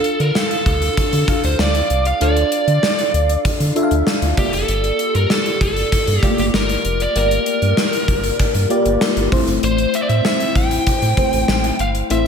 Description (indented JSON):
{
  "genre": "1980s-style pop",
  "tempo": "97 BPM",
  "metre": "4/4",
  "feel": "straight",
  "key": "D minor",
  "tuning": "A4 = 440 Hz",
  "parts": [
    { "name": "biting lead guitar", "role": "melody", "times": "0.0-12.3 s", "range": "G4 to G5", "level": "-20 LUFS", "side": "equal", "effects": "overdrive, slapback echo" },
    { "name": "FM electric piano with soft pad layer", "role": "accompaniment", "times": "0.0-12.3 s", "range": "A3 to F5", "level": "-21 LUFS", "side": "left 1 dB", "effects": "chorus, phaser, slapback echo" },
    { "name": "gated 80s drum kit", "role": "drums", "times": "0.0-12.2 s", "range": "hi-hat, kick drum, snare drum", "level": "-20 LUFS", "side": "equal", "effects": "none" },
    { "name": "round analog bass", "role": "bass", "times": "0.2-12.3 s", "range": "F1 to D3", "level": "-19 LUFS", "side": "equal", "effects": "none" }
  ],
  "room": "moderate lush hall reverb, RT60 1.7 s",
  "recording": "big arena sound",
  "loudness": "-14 LUFS",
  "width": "side -6 dB against mid",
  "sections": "0.0-12.3 A section",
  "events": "none",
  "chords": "0.0 Dm; 4.4 Gm7; 9.3 Am"
}